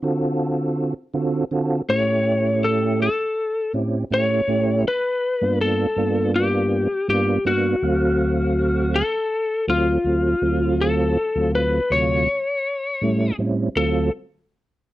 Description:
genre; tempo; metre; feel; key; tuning
blues; 81 BPM; 4/4; straight; unclear; A4 = 441 Hz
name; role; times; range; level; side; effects
mellow tonewheel organ; accompaniment; 0.0-14.1 s; D2 to F5; -20 LUFS; right 2 dB; slow rotary speaker, chorus vibrato
electric slide guitar; melody; 1.9-14.1 s; E#4 to C#5; -21 LUFS; left 2 dB; none
room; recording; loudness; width
light reverb; dry, close 1970s-style studio recording; -18 LUFS; side -16 dB against mid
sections
0.0-13.8 A section; 13.8-14.9 B section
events
none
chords
0.0 D7#9; 1.9 A7#9; 4.9 G7#9; 7.8 D7#9; 12.3 A7#9; 13.8 D7#9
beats
0.40 1.14 | 1.89 2.63 3.37 4.11 | 4.86 5.60 6.34 7.08 | 7.83 8.57 9.31 10.05 | 10.79 11.54 12.28 13.02 | 13.76

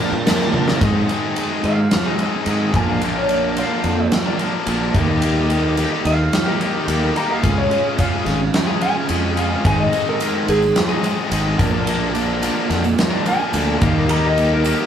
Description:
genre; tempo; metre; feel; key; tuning
classic rock; 108 BPM; 4/4; straight; Bb mixolydian; A4 = 441 Hz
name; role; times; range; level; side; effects
biting overdriven guitar; riff; 0.0-14.9 s; Ab2 to F4; -24 LUFS; right 6 dB; none
fuzz guitar; riff; 0.0-0.8 s; Bb2 to D4; -28 LUFS; right 1 dB; none
tight distorted guitar; riff; 0.0-14.9 s; Ab2 to Bb4; -23 LUFS; left 6 dB; distortion
fuzz fingered electric bass; bass; 0.1-14.7 s; Ab1 to Bb2; -21 LUFS; equal; overdrive
big rock drum kit; drums; 0.3-14.8 s; crash cymbal, kick drum, ride cymbal, snare drum, toms; -21 LUFS; equal; none
tambourine; percussion; 0.3-0.4, 9.9-14.9 s; none; -40 LUFS; right 6 dB; none
electric slide guitar; melody; 1.7-14.9 s; Ab4 to Bb5; -22 LUFS; equal; none
room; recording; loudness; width
moderate stone room reverb, RT60 1.1 s; band playing live in one room; -16 LUFS; side -8 dB against mid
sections
0.8-14.9 A section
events
drum fill 0.5; half time 0.8-14.9; electric slide guitar solo 0.8-14.9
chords
0.0 Bb; 0.8 Ab; 2.7 Bb; 5.0 Eb; 7.4 Db; 9.7 Ab; 11.6 Bb; 13.8 Eb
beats
0.27 | 0.82 1.37 1.92 2.47 | 3.02 3.57 4.12 4.67 | 5.23 5.78 6.33 6.88 | 7.44 7.99 8.54 9.10 | 9.65 10.21 10.76 11.32 | 11.87 12.43 12.99 13.54 | 14.10 14.66

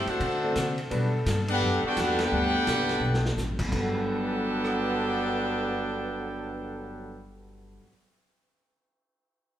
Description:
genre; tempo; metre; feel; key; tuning
jazz, big band swing; 171 BPM; 4/4; swing 62% on 8ths; G major; A4 = 440 Hz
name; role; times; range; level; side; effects
bright trumpet section; melody; 0.0-7.3 s; D4 to G5; -30 LUFS; equal; none
clear trombone section; second line; 0.0-7.3 s; G2 to G4; -31 LUFS; right 1 dB; none
picked steel-string acoustic guitar; accompaniment; 0.0-7.9 s; G2 to A4; -39 LUFS; left 3 dB; none
clear trombone section; sustained chords; 0.0-7.3 s; D3 to A4; -36 LUFS; left 1 dB; none
upright bass; bass; 0.0-7.8 s; G1 to D3; -32 LUFS; equal; none
vintage drum kit; drums; 0.1-4.7 s; crash cymbal, hi-hat, kick drum, ride cymbal, rim click, snare drum; -34 LUFS; equal; none
warm concert grand piano; accompaniment; 0.4-7.9 s; G2 to C5; -35 LUFS; equal; none
room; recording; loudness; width
wet stone room reverb, RT60 1.1 s; band playing live in one room; -25 LUFS; side -11 dB against mid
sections
0.0-3.7 A section; 3.7-6.5 B section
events
band accent 2.1; drum fill 3.0-3.4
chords
0.2 D7; 0.9 Gmaj7; 3.7 Gmaj9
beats
0.20 0.55 | 0.90 1.26 1.61 1.96 | 2.31 2.66 3.01 3.37 | 3.72 4.07 4.42 4.77 | 5.12 5.48 5.83 6.18

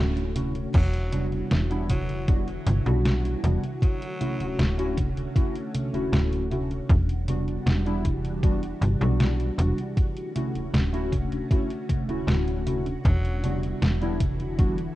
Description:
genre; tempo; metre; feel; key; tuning
vaporwave; 78 BPM; 4/4; straight; unclear; A4 = 442 Hz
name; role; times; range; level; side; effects
warbly lo-fi synth keys; accompaniment; 0.0-14.8 s; G3 to F#4; -31 LUFS; equal; wide subtle chorus, analog delay
soft string machine; sustained chords; 0.0-15.0 s; D3 to F#4; -34 LUFS; equal; phaser, ensemble chorus
slap-like FM bass; bass; 0.0-14.9 s; D1 to B1; -26 LUFS; equal; none
detuned 8-bit digital drum machine; drums; 0.2-14.9 s; congas, crash cymbal, hi-hat, snare drum; -29 LUFS; right 1 dB; overdrive
raspy tenor saxophone; melody; 0.7-4.9, 13.1-13.6 s; F#3; -38 LUFS; equal; tape echo
electronic kick drum; drums; 0.7-14.7 s; none; -23 LUFS; equal; overdrive
room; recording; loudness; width
little or no reverb; rough home demo mix, cassette tape; -23 LUFS; side -16 dB against mid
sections
0.7-15.0 A section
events
band accent 0.0-0.4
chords
0.0 Dmaj7; 0.7 Em9; 3.8 Dmaj7; 6.9 Em9; 10.0 Dmaj7; 13.1 Em9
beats
| 0.74 1.51 2.28 3.05 | 3.82 4.59 5.36 6.13 | 6.90 7.67 8.43 9.20 | 9.97 10.74 11.51 12.28 | 13.05 13.82 14.59

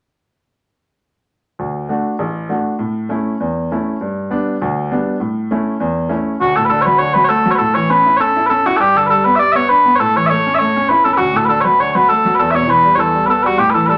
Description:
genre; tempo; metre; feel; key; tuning
celtic folk; 200 BPM; 4/4; swing 53% on 8ths; D major; A4 = 440 Hz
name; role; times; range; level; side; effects
clear baby grand piano; accompaniment; 1.6-14.0 s; A1 to F#4; -20 LUFS; equal; none
mellow small bagpipes; melody; 6.4-14.0 s; F#4 to E5; -14 LUFS; equal; none
room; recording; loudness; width
wet studio ambience, RT60 0.5 s; none; -15 LUFS; mono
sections
1.6-6.4 A section; 6.4-14.0 B section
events
none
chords
1.6 D; 2.8 A; 4.0 G; 5.2 A; 6.4 D; 7.6 A; 8.8 G; 10.0 A; 11.2 D; 12.4 Em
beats
| 1.60 1.90 2.20 2.50 | 2.80 3.10 3.40 3.70 | 4.00 4.30 4.60 4.90 | 5.20 5.50 5.80 6.10 | 6.40 6.70 7.00 7.30 | 7.60 7.90 8.20 8.50 | 8.80 9.10 9.39 9.69 | 9.99 10.29 10.59 10.89 | 11.19 11.49 11.79 12.09 | 12.38 12.68 12.98 13.28 | 13.58 13.88

